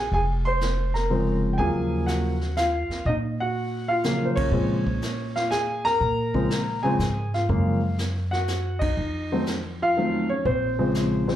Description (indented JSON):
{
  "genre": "jazz piano trio",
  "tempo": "122 BPM",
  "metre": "3/4",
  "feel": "swing 68% on 8ths",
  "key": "Bb minor",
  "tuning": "A4 = 435 Hz",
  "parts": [
    { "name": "warm grand piano", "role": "melody", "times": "0.0-11.4 s", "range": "Db3 to C6", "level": "-24 LUFS", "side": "equal", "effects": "slapback echo" },
    { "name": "upright bass", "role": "bass", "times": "0.0-11.4 s", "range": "F1 to Bb2", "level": "-27 LUFS", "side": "equal", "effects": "none" },
    { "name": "vintage brush drum kit", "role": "drums", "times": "0.1-11.4 s", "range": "brushed snare drum, hi-hat, kick drum, ride cymbal, snare drum", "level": "-33 LUFS", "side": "equal", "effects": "none" }
  ],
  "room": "light reverb",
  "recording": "live gig heard through the venue's PA, club reverb",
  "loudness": "-22 LUFS",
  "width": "side -11 dB against mid",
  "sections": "0.0-11.4 A section",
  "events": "band accent 4.3, 8.7",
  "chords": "0.0 Bbm9; 1.6 Ebm9; 4.5 Bbm7; 7.5 Gbmaj7; 9.0 F7b9; 10.4 Bbm9"
}